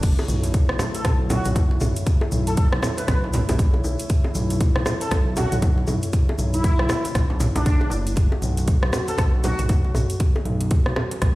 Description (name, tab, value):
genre	afro house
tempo	118 BPM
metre	4/4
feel	swing 60% on 16ths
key	B minor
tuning	A4 = 443 Hz
part	warm analog pad	sustained chords	0.0-11.3 s	D3 to C#5	-31 LUFS	equal	chorus, sidechain pumping
part	smooth gliding synth bass	bass	0.0-11.3 s	F#1 to B1	-24 LUFS	equal	sidechain pumping
part	electronic kick drum	drums	0.0-11.3 s	none	-19 LUFS	equal	none
part	house drum kit	drums	0.0-11.3 s	crash cymbal, hi-hat, rim click, toms	-28 LUFS	equal	none
part	congas	percussion	0.0-11.3 s	none	-29 LUFS	right 2 dB	none
part	tube shaker	percussion	0.0-10.2 s	none	-38 LUFS	left 2 dB	none
part	bongos	percussion	0.2-11.1 s	none	-31 LUFS	left 2 dB	none
part	expressive synth lead	melody	0.9-9.6 s	D4 to B4	-30 LUFS	equal	ensemble chorus, cassette tape, digital delay
room	light reverb, digital ambience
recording	played on a big sound system in a bare room, stone room reverb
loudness	-19 LUFS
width	side -18 dB against mid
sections	0.0-11.3 A section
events	none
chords	0.0 Bm11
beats	| 0.03 0.54 1.05 1.56 | 2.06 2.57 3.08 3.59 | 4.10 4.61 5.12 5.62 | 6.13 6.64 7.15 7.66 | 8.17 8.68 9.18 9.69 | 10.20 10.71 11.22